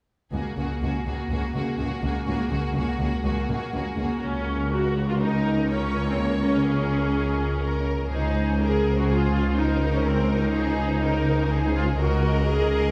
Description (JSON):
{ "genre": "cinematic", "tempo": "124 BPM", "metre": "4/4", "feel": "straight", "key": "unclear", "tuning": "A4 = 443 Hz", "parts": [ { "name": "rich symphonic violin section", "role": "melody", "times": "0.3-12.9 s", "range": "Ab4 to Eb5", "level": "-40 LUFS", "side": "equal", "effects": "none" }, { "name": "clear symphonic violin section", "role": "second line", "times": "0.3-12.9 s", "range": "Gb4 to Db5", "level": "-34 LUFS", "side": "equal", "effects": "none" }, { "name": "clear symphonic viola section", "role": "accompaniment", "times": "0.3-12.9 s", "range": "Bb3 to Ab4", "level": "-30 LUFS", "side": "equal", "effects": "none" }, { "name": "rich symphonic cello section", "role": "bass", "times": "0.3-12.9 s", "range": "Db2", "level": "-30 LUFS", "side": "equal", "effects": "none" }, { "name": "rich symphonic double bass section", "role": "bass", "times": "0.3-12.9 s", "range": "Db2", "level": "-30 LUFS", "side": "equal", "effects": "none" }, { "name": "concert harp", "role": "arpeggios", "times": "4.2-12.9 s", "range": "Db3 to Bb4", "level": "-33 LUFS", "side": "equal", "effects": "none" } ], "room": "wet scoring stage reverb, RT60 1.9 s", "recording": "heard from further back in the room", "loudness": "-24 LUFS", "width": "mono", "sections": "0.3-4.2 A section; 4.2-12.9 B section", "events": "none", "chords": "0.3 Gbadd9/Db; 8.1 Ab/Db; 12.0 Ebm/Db" }